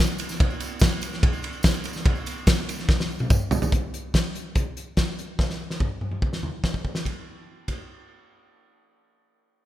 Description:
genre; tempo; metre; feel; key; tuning
rock; 144 BPM; 4/4; straight; none; none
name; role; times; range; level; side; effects
loose indie drum kit; drums; 0.2-7.8 s; hi-hat, kick drum, ride cymbal, snare drum, toms; -22 LUFS; equal; none
tambourine; percussion; 0.2-3.7 s; none; -40 LUFS; right 3 dB; none
room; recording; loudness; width
small room reverb; rough home demo mix; -23 LUFS; side -14 dB against mid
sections
0.0-3.7 A section; 3.7-7.1 B section; 7.1-9.7 C section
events
drum fill 2.9-3.7, 5.4-7.1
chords
none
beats
| 0.40 0.81 1.23 1.64 | 2.05 2.47 2.88 3.30 | 3.71 4.13 4.54 4.96 | 5.38 5.80 6.21 6.63 | 7.05 7.47

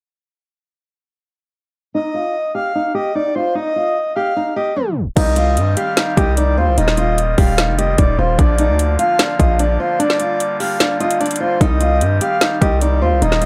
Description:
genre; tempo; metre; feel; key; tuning
hip hop, trap; 149 BPM; 4/4; half-time; unclear; A4 = 440 Hz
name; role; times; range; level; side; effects
nylon-string guitar; melody; 1.9-13.5 s; D4 to G4; -22 LUFS; equal; low-pass filter, analog delay
breathy flute-like synth lead; second line; 1.9-13.5 s; C5 to F5; -22 LUFS; equal; chorus, tremolo, analog delay
pipe organ, soft reed; sustained chords; 5.2-13.5 s; D3 to G4; -28 LUFS; equal; none
distorted 808-style bass; bass; 5.2-13.5 s; Eb1 to G2; -19 LUFS; equal; distortion
trap drum kit; drums; 5.2-13.5 s; crash cymbal, hi-hat, kick drum, snare drum; -19 LUFS; equal; none
room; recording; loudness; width
little or no reverb; dry, gritty hardware recording, tape stop; -16 LUFS; mono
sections
1.9-5.2 A section; 5.2-13.5 B section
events
filter sweep on nylon-string guitar 1.9-5.2; tape stop 4.8-5.2; break 10.0-11.6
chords
1.9 N.C.; 5.2 Cm; 6.8 Ebadd9; 8.4 Bb; 10.0 Gm7; 11.6 Cm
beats
| 1.94 2.35 2.75 3.15 | 3.56 3.96 4.36 4.76 | 5.17 5.57 5.97 6.37 | 6.78 7.18 7.58 7.98 | 8.39 8.79 9.19 9.60 | 10.00 10.40 10.80 11.21 | 11.61 12.01 12.41 12.82 | 13.22

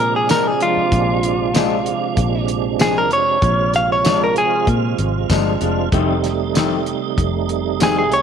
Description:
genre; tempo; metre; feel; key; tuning
straight-eighth soul blues; 96 BPM; 4/4; straight; Bb mixolydian; A4 = 440 Hz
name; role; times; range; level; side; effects
direct-recorded clean electric guitar; melody; 0.0-8.2 s; F4 to F5; -18 LUFS; left 1 dB; none
tonewheel organ; accompaniment; 0.0-8.2 s; C3 to F4; -21 LUFS; right 13 dB; overdrive, chorus vibrato, slow rotary speaker
fingered electric bass; bass; 0.0-8.2 s; F1 to Bb2; -23 LUFS; left 1 dB; none
electric guitar through a small old amp; stabs; 0.3-8.0 s; F2 to D4; -23 LUFS; left 12 dB; none
cloth-damped thuddy drum kit; drums; 0.3-8.2 s; hi-hat, kick drum, snare drum, tambourine; -21 LUFS; equal; none
room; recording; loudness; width
light reverb, small room ambience; 1960s-style stereo with parts hard left and right; -15 LUFS; side -7 dB against mid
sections
0.0-8.2 A section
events
clean electric guitar solo 0.0-8.2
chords
0.0 Bb7; 5.9 F7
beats
0.29 | 0.92 1.55 2.17 2.80 | 3.43 4.05 4.68 5.30 | 5.93 6.56 7.18 7.81

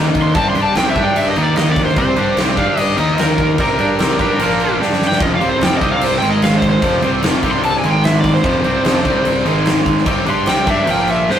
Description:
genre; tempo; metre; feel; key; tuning
blues rock power trio and southern rock; 148 BPM; 4/4; straight; unclear; A4 = 441 Hz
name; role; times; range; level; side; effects
cranked stack guitar; riff; 0.0-11.4 s; F2 to G4; -16 LUFS; equal; overdrive
fuzz fingered electric bass; bass; 0.0-11.4 s; F1 to G2; -22 LUFS; equal; overdrive
huge arena drum kit; drums; 0.1-11.4 s; crash cymbal, kick drum, snare drum; -18 LUFS; equal; none
overdriven slide guitar; melody; 0.2-11.4 s; Bb4 to C6; -18 LUFS; equal; none
room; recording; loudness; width
moderate studio reverb, RT60 0.7 s; rough rehearsal-room recording, tube saturation; -12 LUFS; side -9 dB against mid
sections
0.0-11.4 A section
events
electric slide guitar solo 0.0-11.4; drum fill 4.8-5.2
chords
0.4 C5; 1.0 G5; 1.4 Eb5; 2.0 C5; 2.6 G5; 3.0 Eb5; 3.6 C5; 4.4 Bb5; 4.8 G5; 5.2 F5; 5.8 C5; 6.2 Ab5; 6.8 F5; 7.4 C5; 7.8 Ab5; 8.4 F5; 9.1 C5; 9.5 Ab5; 10.1 C5; 10.9 Bb5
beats
| 0.36 0.76 1.17 1.57 | 1.97 2.38 2.78 3.19 | 3.59 4.00 4.40 4.80 | 5.21 5.61 6.02 6.42 | 6.83 7.23 7.64 8.04 | 8.45 8.85 9.26 9.66 | 10.07 10.47 10.88 11.29

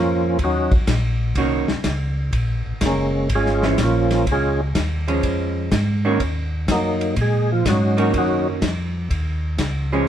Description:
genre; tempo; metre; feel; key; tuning
soul jazz organ trio; 124 BPM; 4/4; swing 68% on 8ths; unclear; A4 = 438 Hz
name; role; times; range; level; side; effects
percussive tonewheel organ; melody; 0.0-8.5 s; Db3 to Ab4; -20 LUFS; right 1 dB; overdrive, chorus vibrato, slow rotary speaker
mellow tonewheel organ; bass; 0.0-10.1 s; Gb1 to Bb2; -22 LUFS; equal; slow rotary speaker
warm soul drum kit; drums; 0.4-9.7 s; hi-hat, kick drum, ride cymbal, snare drum; -24 LUFS; equal; none
vintage hollow-body jazz guitar; accompaniment; 1.4-10.1 s; Eb3 to Gb4; -22 LUFS; right 3 dB; none
room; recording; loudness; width
moderate club reverb, RT60 0.8 s; heard from further back in the room; -18 LUFS; side -10 dB against mid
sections
0.0-10.1 A section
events
tonewheel organ solo 0.0-10.1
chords
0.4 Ebm7; 2.3 Bbm7; 6.2 Ebm7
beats
| 0.39 0.87 1.36 1.84 | 2.33 2.81 3.29 3.78 | 4.26 4.75 5.23 5.72 | 6.20 6.68 7.17 7.65 | 8.14 8.62 9.11 9.59 | 10.08

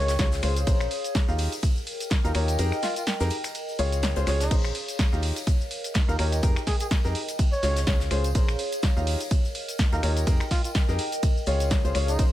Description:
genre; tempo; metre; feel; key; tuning
piano house; 125 BPM; 4/4; swing 56% on 16ths; unclear; A4 = 440 Hz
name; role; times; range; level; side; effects
trumpet with bucket mute; melody; 0.0-12.2 s; Eb4 to Db5; -33 LUFS; right 1 dB; digital delay
warm upright piano; riff; 0.0-12.3 s; Db4 to F5; -31 LUFS; left 2 dB; sidechain pumping, digital delay
organ-like FM bass; bass; 0.0-12.3 s; Bb1 to F2; -26 LUFS; equal; sidechain pumping
warbly tape-like pad; texture; 0.0-12.3 s; Ab4 to G5; -34 LUFS; equal; chorus, built-in reverb, sidechain pumping
damped 70s drum kit; drums; 0.1-12.3 s; hi-hat, shaker, snare drum; -41 LUFS; left 3 dB; sidechain pumping on hats, high-pass filter on hats, high-pass filter on snare, sidechain pumping on perc, high-pass filter on perc, high-pass filter on room
punchy analog drum machine; drums; 0.1-12.3 s; cabasa, crash cymbal, finger snaps, hi-hat, ride cymbal, snare drum; -32 LUFS; equal; none
tambourine; percussion; 0.1-12.3 s; none; -44 LUFS; right 1 dB; none
electronic kick drum; drums; 0.2-12.3 s; none; -23 LUFS; equal; none
room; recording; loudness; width
small room ambience; none; -22 LUFS; side -14 dB against mid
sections
0.0-12.3 A section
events
kick drops out 2.6-4.5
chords
0.0 Dbmaj7; 0.7 Bbm9; 1.4 Eb9; 2.6 Fm11; 3.5 Db; 4.5 Bbm9; 5.2 Eb9; 6.4 Fm11; 7.4 Dbmaj7; 8.3 Bbm9; 9.1 Eb9; 10.3 Fm11; 11.2 Db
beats
0.19 | 0.67 1.15 1.63 2.11 | 2.59 3.07 3.55 4.03 | 4.51 4.99 5.47 5.95 | 6.43 6.91 7.39 7.87 | 8.35 8.83 9.31 9.79 | 10.27 10.75 11.23 11.71 | 12.19

